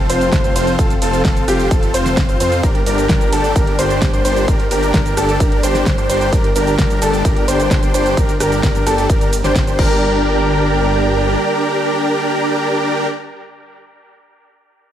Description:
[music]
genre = EDM, festival progressive house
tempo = 130 BPM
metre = 4/4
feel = straight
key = G minor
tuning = A4 = 440 Hz
[part]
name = lush unison pad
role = sustained chords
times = 0.0-13.1 s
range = F3 to Bb4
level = -24 LUFS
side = right 1 dB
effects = chorus, phaser, sidechain pumping
[part]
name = warm grand piano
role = arpeggios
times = 0.0-13.1 s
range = G4 to C5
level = -21 LUFS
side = left 1 dB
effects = sidechain pumping, dub echo
[part]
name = dense compressed supersaw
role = riff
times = 0.0-13.1 s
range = C4 to C5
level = -18 LUFS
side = equal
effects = sidechain pumping, dub echo
[part]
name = wide detuned saw bass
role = bass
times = 0.0-11.4 s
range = F1 to F2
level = -21 LUFS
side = equal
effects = chorus, sidechain pumping
[part]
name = pop drum kit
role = drums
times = 0.1-9.9 s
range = cabasa, crash cymbal, hi-hat, ride cymbal, rim click, snare drum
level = -22 LUFS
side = equal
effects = none
[part]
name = electronic kick drum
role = drums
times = 0.3-9.9 s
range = none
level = -16 LUFS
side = equal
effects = none
[sound]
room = light reverb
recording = none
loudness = -13 LUFS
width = side -10 dB against mid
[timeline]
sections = 0.0-10.0 A section; 10.0-13.7 B section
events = drop 0.0-10.0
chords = 0.0 F; 2.6 Gm

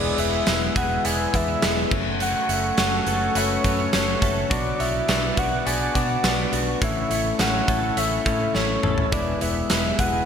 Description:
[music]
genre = 1980s-style pop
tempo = 104 BPM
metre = 4/4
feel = straight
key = A major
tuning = A4 = 440 Hz
[part]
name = soft octave-layered synth lead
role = melody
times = 0.0-10.3 s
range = C#5 to G#5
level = -26 LUFS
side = left 1 dB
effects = chorus
[part]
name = bell-like tine electric piano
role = accompaniment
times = 0.0-10.3 s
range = G#3 to E5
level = -27 LUFS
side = left 5 dB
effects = analog chorus
[part]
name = warm analog pad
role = sustained chords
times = 0.0-10.3 s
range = G#4 to E6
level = -32 LUFS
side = right 3 dB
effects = chorus
[part]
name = direct-recorded clean electric guitar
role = riff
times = 0.0-10.3 s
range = E3 to A4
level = -33 LUFS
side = right 6 dB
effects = ensemble chorus
[part]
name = vintage muted fingered electric bass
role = bass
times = 0.0-10.2 s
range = E1 to B2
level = -29 LUFS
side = right 1 dB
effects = none
[part]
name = big rock drum kit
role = drums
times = 0.2-10.1 s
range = crash cymbal, hi-hat, kick drum, snare drum, tambourine, toms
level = -24 LUFS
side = right 1 dB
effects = gated reverb
[sound]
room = moderate lush hall reverb, RT60 2.4 s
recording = bright 1980s-style digital production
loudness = -20 LUFS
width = side -7 dB against mid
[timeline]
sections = 0.0-10.3 A section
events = drum fill 8.5-9.1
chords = 0.0 E; 1.9 F#m; 4.5 Bm; 6.8 A; 9.1 E

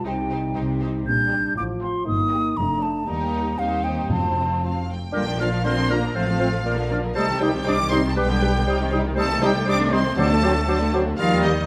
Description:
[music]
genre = quick classical-period movement for symphony orchestra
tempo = 119 BPM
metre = 2/4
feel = straight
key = Bb major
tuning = A4 = 445 Hz
[part]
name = mellow hollow silver concert flute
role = second line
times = 0.0-11.7 s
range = F5 to G6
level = -30 LUFS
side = equal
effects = none
[part]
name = mellow French horn section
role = sustained chords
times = 0.0-11.5 s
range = Eb3 to F4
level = -30 LUFS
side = equal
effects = none
[part]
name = warm studio double bass section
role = bass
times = 0.0-11.7 s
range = F1 to Eb2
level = -29 LUFS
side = equal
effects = none
[part]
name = rich studio violin section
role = melody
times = 0.1-11.7 s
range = Bb4 to D6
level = -32 LUFS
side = equal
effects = none
[part]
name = warm studio violin section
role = second line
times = 0.1-11.7 s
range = G3 to B4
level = -33 LUFS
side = equal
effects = none
[part]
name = clear studio viola section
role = accompaniment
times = 0.1-11.7 s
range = D3 to Eb4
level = -34 LUFS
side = equal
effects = none
[part]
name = warm studio cello section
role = bass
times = 0.1-11.7 s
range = Eb2 to D4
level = -31 LUFS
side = equal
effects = none
[part]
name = timpani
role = percussion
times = 4.1-4.8, 10.2-10.9 s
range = F2 to D3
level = -31 LUFS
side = equal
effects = none
[part]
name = warm clarinet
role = second line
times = 5.1-11.7 s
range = Bb4 to D5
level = -33 LUFS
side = equal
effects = none
[part]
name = warm oboe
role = second line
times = 5.1-11.7 s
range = Eb4 to D5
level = -32 LUFS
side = equal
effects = none
[part]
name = dark bassoon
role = accompaniment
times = 5.1-11.7 s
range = F#3 to D4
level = -31 LUFS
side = equal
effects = none
[sound]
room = moderate scoring stage reverb, RT60 1.5 s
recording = none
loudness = -22 LUFS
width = mono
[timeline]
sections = 0.0-5.1 A section; 5.1-11.7 B section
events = none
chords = 0.1 Cm; 1.1 Gm/Bb; 1.6 F/A; 2.1 Eb/G; 2.6 Dm/F; 3.1 Eb; 3.6 Cm/Eb; 4.1 F; 5.1 Bb; 6.2 F/A; 6.7 Bb; 7.2 Cm; 8.2 G/B; 8.7 Cm; 9.2 Am7b5/C; 10.2 D7

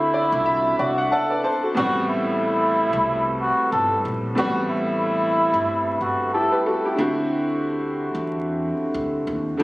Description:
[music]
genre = hip hop, boom-bap hip-hop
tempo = 92 BPM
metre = 4/4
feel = swing 56% on 16ths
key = unclear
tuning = A4 = 441 Hz
[part]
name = trumpet with cup mute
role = melody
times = 0.0-6.6 s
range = E4 to A4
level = -21 LUFS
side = equal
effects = high-pass filter, low-pass filter, tape echo
[part]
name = warm upright piano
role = accompaniment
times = 0.0-9.6 s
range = A2 to A5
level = -23 LUFS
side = equal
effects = cassette tape, high-pass filter, low-pass filter
[part]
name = upright bass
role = bass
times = 0.0-9.6 s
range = G1 to E2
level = -32 LUFS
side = equal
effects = none
[sound]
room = light reverb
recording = recorded on a phone in the room, club reverb, vinyl crackle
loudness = -19 LUFS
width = side -19 dB against mid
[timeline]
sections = 0.0-7.0 A section; 7.0-9.6 B section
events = none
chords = 0.0 D7; 1.8 Am7; 7.0 D7

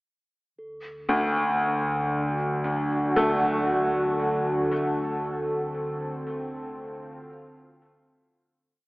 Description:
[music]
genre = dark ambient drone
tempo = free time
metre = none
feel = none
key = unclear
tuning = A4 = 440 Hz
[part]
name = deep dark ambient pad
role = sustained chords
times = 1.7-8.9 s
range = C4 to F#5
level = -27 LUFS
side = equal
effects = chorus, built-in reverb
[part]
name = deep rumbling drone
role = drone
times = 1.1-8.9 s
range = D2 to D3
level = -35 LUFS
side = equal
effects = built-in reverb
[part]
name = bronze singing bowl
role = texture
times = 0.6-8.9 s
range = A4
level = -42 LUFS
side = equal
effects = none
[part]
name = bright baby grand piano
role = arpeggios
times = 1.1-8.9 s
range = D2 to A3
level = -26 LUFS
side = equal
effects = tape echo
[sound]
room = wet cathedral reverb, RT60 7.0 s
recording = AM radio sound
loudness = -23 LUFS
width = side -22 dB against mid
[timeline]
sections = 0.6-8.9 A section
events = fade-out on ambient pad 0.6-8.9; fade-out 4.7-8.9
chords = 0.6 D; 4.7 F

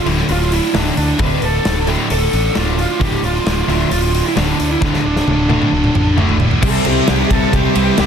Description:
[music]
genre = hard rock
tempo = 132 BPM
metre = 4/4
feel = straight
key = D minor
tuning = A4 = 442 Hz
[part]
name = lead guitar through a small cranked amp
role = melody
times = 0.0-8.1 s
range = D4 to B4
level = -19 LUFS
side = right 2 dB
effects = overdrive
[part]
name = heavy high-gain guitar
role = riff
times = 0.0-8.1 s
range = D2 to C5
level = -22 LUFS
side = equal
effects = distortion
[part]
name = sludgy distorted guitar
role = riff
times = 0.1-8.1 s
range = D2 to C4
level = -22 LUFS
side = right 9 dB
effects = overdrive
[part]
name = tight distorted guitar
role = riff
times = 0.1-8.1 s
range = D2 to C4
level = -23 LUFS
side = left 11 dB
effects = distortion
[part]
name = fuzz fingered electric bass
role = bass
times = 0.1-8.1 s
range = D1 to D2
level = -19 LUFS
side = equal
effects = overdrive
[part]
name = big rock drum kit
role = drums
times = 0.1-8.1 s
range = crash cymbal, hi-hat, kick drum, ride cymbal, snare drum, toms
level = -19 LUFS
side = equal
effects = none
[sound]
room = light reverb, studio reverb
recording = dense, heavily limited modern master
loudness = -13 LUFS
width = side -7 dB against mid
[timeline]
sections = 0.0-6.6 A section; 6.6-8.1 B section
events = drum fill 4.8-6.6; lead electric guitar solo 6.6-8.1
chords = 0.0 Dm; 6.6 C

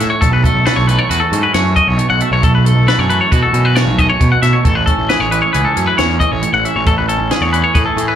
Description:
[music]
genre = math rock and midwest emo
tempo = 135 BPM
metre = 5/4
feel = straight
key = unclear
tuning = A4 = 441 Hz
[part]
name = twangy electric guitar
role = accompaniment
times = 0.0-8.2 s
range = F#2 to A4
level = -19 LUFS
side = right 9 dB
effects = slapback echo
[part]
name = twangy electric guitar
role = arpeggios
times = 0.0-8.2 s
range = A4 to F#5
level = -15 LUFS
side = left 4 dB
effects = slapback echo
[part]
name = fuzz picked electric bass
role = bass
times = 0.0-8.2 s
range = A1 to B2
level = -16 LUFS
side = equal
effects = overdrive
[part]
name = compact cocktail drum kit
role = drums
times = 0.0-8.1 s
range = hi-hat, kick drum, snare drum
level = -17 LUFS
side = equal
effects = none
[sound]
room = little or no reverb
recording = live gig heard through the venue's PA, club reverb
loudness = -11 LUFS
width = side -10 dB against mid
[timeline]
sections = 0.0-8.2 A section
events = none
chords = 0.2 B9sus4; 4.6 Amaj7

